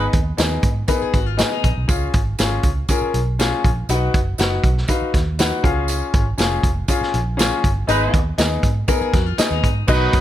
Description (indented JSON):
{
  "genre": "uptempo 1960s-style soul",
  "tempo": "120 BPM",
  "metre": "4/4",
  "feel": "straight",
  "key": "Db mixolydian",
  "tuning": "A4 = 442 Hz",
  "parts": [
    { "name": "warm horn section", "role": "second line", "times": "0.0-0.1, 7.9-10.2 s", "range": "Gb3 to Cb5", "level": "-22 LUFS", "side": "right 2 dB", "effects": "none" },
    { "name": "clear grand piano", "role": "accompaniment", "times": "0.0-10.2 s", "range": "Cb4 to Gb5", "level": "-22 LUFS", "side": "left 4 dB", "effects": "none" },
    { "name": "vintage muted fingered electric bass", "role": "bass", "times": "0.0-10.2 s", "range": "F1 to Ab2", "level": "-22 LUFS", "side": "right 1 dB", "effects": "none" },
    { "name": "vintage drum kit", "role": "drums", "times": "0.1-10.2 s", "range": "crash cymbal, hi-hat, kick drum, snare drum", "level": "-19 LUFS", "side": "right 1 dB", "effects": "none" },
    { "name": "tambourine", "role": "percussion", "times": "0.4-10.0 s", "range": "none", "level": "-32 LUFS", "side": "right 9 dB", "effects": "none" },
    { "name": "hollow-body jazz guitar", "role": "riff", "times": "0.9-1.9, 8.9-9.9 s", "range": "Eb4 to Bb4", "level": "-26 LUFS", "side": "left 10 dB", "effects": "none" },
    { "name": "percussive tonewheel organ", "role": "sustained chords", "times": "9.9-10.2 s", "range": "Eb3 to Gb4", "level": "-26 LUFS", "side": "right 4 dB", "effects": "slow rotary speaker" }
  ],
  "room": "light reverb",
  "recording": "none",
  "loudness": "-16 LUFS",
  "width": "side -12 dB against mid",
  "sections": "0.0-9.9 A section",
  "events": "band accent 0.0-1.9, 7.9-9.9",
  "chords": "0.0 Abm; 1.9 Db; 3.9 Cb; 5.6 Db; 7.9 Abm"
}